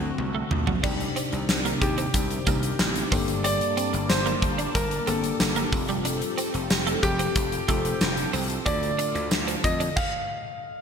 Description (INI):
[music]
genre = 1980s-style pop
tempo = 92 BPM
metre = 4/4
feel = straight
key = unclear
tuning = A4 = 440 Hz
[part]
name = clear baby grand piano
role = melody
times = 0.0-10.8 s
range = F#4 to F5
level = -30 LUFS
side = left 1 dB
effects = ping-pong delay
[part]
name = tine electric piano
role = accompaniment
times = 0.0-10.0 s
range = G2 to A4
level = -32 LUFS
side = left 4 dB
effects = lush chorus
[part]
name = phased analog pad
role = sustained chords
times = 0.0-10.0 s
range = C3 to A5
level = -34 LUFS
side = right 1 dB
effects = phaser, chorus
[part]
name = gritty slap bass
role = bass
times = 0.0-9.9 s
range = F1 to F2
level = -31 LUFS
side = right 1 dB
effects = overdrive
[part]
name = huge arena drum kit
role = drums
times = 0.2-10.1 s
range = crash cymbal, hi-hat, kick drum, snare drum, toms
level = -27 LUFS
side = equal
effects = gated reverb
[part]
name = twelve-string electric guitar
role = riff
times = 0.3-9.9 s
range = F#3 to D4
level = -33 LUFS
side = right 6 dB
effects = ensemble chorus, ping-pong delay
[part]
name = tambourine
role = percussion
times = 0.8-9.8 s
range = none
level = -39 LUFS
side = right 10 dB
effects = none
[sound]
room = moderate lush hall reverb, RT60 2.5 s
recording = bright 1980s-style digital production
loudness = -22 LUFS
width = side -7 dB against mid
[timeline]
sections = 0.8-10.8 A section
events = drum fill 0.2-0.8; stop 10.0-10.8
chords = 0.0 D7; 0.8 Cmadd9; 3.1 Gmadd9; 5.7 Fadd9; 8.7 Dm